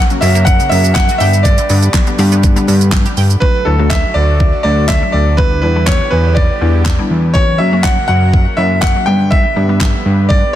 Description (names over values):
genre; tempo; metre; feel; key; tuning
dance-pop; 122 BPM; 4/4; straight; D major; A4 = 440 Hz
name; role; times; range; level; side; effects
soft supersaw; sustained chords; 0.0-10.6 s; C#3 to B4; -24 LUFS; equal; sidechain pumping
resonant blip pluck; arpeggios; 0.0-3.3 s; C#3 to G5; -25 LUFS; right 4 dB; chorus, sidechain pumping, ping-pong delay
hollow square pluck; accompaniment; 0.1-10.3 s; F#3 to A4; -20 LUFS; left 3 dB; chorus, sidechain pumping
pop drum kit; drums; 0.1-10.4 s; handclaps, hi-hat, kick drum, shaker, snare drum; -14 LUFS; equal; overdrive
bright concert grand piano; melody; 0.2-10.6 s; A4 to G5; -16 LUFS; equal; ping-pong delay
fat analog bass; bass; 0.2-10.4 s; D2 to G2; -12 LUFS; equal; sidechain pumping
group handclap; percussion; 1.0-3.0 s; none; barely audible; none; none
room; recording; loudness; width
little or no reverb; dense, heavily limited modern master; -9 LUFS; side -12 dB against mid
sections
0.0-3.4 A section; 3.4-10.6 B section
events
none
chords
0.0 F#; 1.2 G; 3.4 D; 5.4 Em7; 7.4 F#; 9.1 G